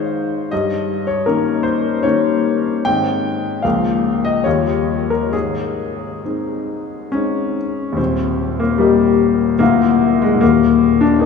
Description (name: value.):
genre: classical, romantic character piece for solo piano.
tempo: 65-80 BPM.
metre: 3/4.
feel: rubato.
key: Ab major, Eb major from 8.0 s.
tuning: A4 = 439 Hz.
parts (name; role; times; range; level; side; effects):
clear concert grand piano; solo; 0.0-11.3 s; D1 to G5; -14 LUFS; left 4 dB; none.
room: wet cathedral reverb, RT60 5.4 s.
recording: in a vast, echoing space, small room reverb.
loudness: -14 LUFS.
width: side -5 dB against mid.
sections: 0.0-8.0 A section; 8.0-11.3 B section.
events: none.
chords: 0.0 Ab; 0.5 Eb7/G; 2.9 Ab; 3.6 Bbm/Db; 4.5 Eb9; 5.3 Ab; 8.0 Eb; 9.6 Bb/D; 10.4 Eb5.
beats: | 0.51 1.26 2.03 | 2.86 3.64 4.45 | 5.33 6.23 7.12 | 7.98 8.80 9.60 | 10.41 11.21.